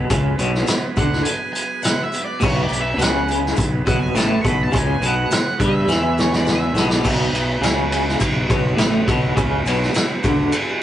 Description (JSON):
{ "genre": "psychedelic rock", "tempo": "104 BPM", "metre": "4/4", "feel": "straight", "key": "B dorian", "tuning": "A4 = 440 Hz", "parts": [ { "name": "combo organ", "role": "sustained chords", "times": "0.0-10.8 s", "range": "F#3 to B4", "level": "-29 LUFS", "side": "right 4 dB", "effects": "none" }, { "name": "twangy electric guitar", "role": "riff", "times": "0.0-10.5 s", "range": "A2 to G3", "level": "-22 LUFS", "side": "equal", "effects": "tremolo" }, { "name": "fuzz fingered electric bass", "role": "bass", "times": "0.0-10.5 s", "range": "A1 to G2", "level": "-23 LUFS", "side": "equal", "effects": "overdrive" }, { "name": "vintage drum kit", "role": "drums", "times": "0.1-10.7 s", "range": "crash cymbal, hi-hat, kick drum, ride cymbal, snare drum", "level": "-20 LUFS", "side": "equal", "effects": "none" }, { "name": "maracas", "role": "percussion", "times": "0.1-10.7 s", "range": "none", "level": "-39 LUFS", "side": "left 7 dB", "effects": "none" }, { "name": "octave-fuzz lead guitar", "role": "melody", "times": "1.0-7.0 s", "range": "C#5 to C#6", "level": "-25 LUFS", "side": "right 1 dB", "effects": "distortion" } ], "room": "light reverb", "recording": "rough rehearsal-room recording, nothing above 10.5 kHz", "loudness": "-16 LUFS", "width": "side -12 dB against mid", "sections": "0.0-7.0 A section; 7.0-10.8 B section", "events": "lead electric guitar solo 0.0-7.0; drum fill 5.9-7.0", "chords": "0.0 B5; 7.0 Bm" }